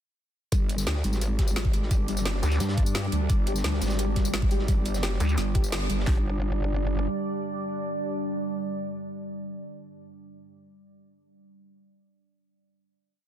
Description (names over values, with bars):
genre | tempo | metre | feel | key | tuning
dark technical drum and bass | 173 BPM | 4/4 | straight | unclear | A4 = 439 Hz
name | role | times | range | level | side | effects
deep dark ambient pad | sustained chords | 1.3-9.6 s | G3 to D5 | -33 LUFS | right 2 dB | chorus, built-in reverb, sidechain pumping
soft round pluck | arpeggios | 0.5-6.2 s | G3 to G4 | -35 LUFS | left 2 dB | ensemble chorus, sidechain pumping, dub echo
growl bass | bass | 0.5-7.1 s | G1 to G2 | -28 LUFS | equal | chorus, sidechain pumping
crunchy breakbeat drum kit | drums | 0.5-6.1 s | hi-hat, snare drum | -42 LUFS | equal | none
drum and bass drum kit | drums | 0.5-6.2 s | kick drum, snare drum | -24 LUFS | equal | overdrive
drum and bass drum kit | drums | 0.5-6.0 s | hi-hat, snare drum, tambourine | -33 LUFS | equal | none
vowel-sweep wobble bass | bass | 2.4-2.6, 5.2-5.4 s | D2 | -23 LUFS | equal | chorus
room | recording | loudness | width
digital ambience | dense, heavily limited modern master | -24 LUFS | side -10 dB against mid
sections
0.5-6.1 drop; 6.1-8.8 final chord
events
drop 0.5-6.1; band accent 5.7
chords
0.5 G5